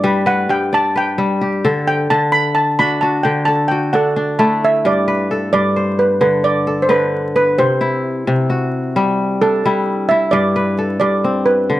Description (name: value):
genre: west african traditional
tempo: 88 BPM (dotted quarters)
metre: 12/8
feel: straight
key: G major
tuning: A4 = 440 Hz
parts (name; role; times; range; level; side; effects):
- steel pan; melody; 0.0-11.8 s; A4 to B5; -16 LUFS; right 1 dB; none
- kora; arpeggios; 0.0-11.8 s; G2 to D5; -17 LUFS; left 2 dB; none
room: moderate spring reverb, RT60 2.0 s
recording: dark, warm production, vinyl crackle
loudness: -13 LUFS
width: side -15 dB against mid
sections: 0.0-4.8 A section; 4.8-11.8 B section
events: steel pan solo 0.0-4.8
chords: 0.0 G; 2.1 D; 4.8 G; 7.6 C; 10.3 G